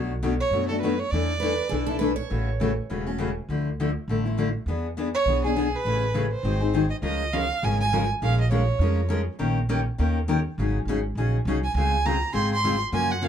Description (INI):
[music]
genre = acoustic string swing (jazz manouche)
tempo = 203 BPM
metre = 4/4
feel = swing 57% on 8ths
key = A major, Db major from 7.0 s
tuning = A4 = 440 Hz
[part]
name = picked steel-string acoustic guitar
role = accompaniment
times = 0.0-13.3 s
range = B2 to Bb4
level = -26 LUFS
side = left 3 dB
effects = none
[part]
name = upright bass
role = bass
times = 0.0-13.3 s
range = E1 to F#2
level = -26 LUFS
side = right 1 dB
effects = none
[part]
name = clear violin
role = melody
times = 0.4-2.0, 5.1-9.1, 11.6-13.3 s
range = G#4 to C6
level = -26 LUFS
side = right 4 dB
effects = plate reverb
[part]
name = picked steel-string acoustic guitar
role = second line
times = 1.4-2.7 s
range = G#4 to C#5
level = -32 LUFS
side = right 7 dB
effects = analog delay
[sound]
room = moderate small room reverb, RT60 0.6 s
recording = dark, warm production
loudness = -22 LUFS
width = side -9 dB against mid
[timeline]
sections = 0.0-7.0 A section; 7.0-13.3 B section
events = none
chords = 0.0 Bm9; 1.1 E7sus4; 2.3 A6; 3.5 Dmadd9; 4.7 E6; 5.9 Amaj9; 6.4 G#7; 7.0 Db6; 8.2 Bbm7; 9.4 Eb7/Bb; 10.6 Ab9sus4; 11.8 Dbmaj7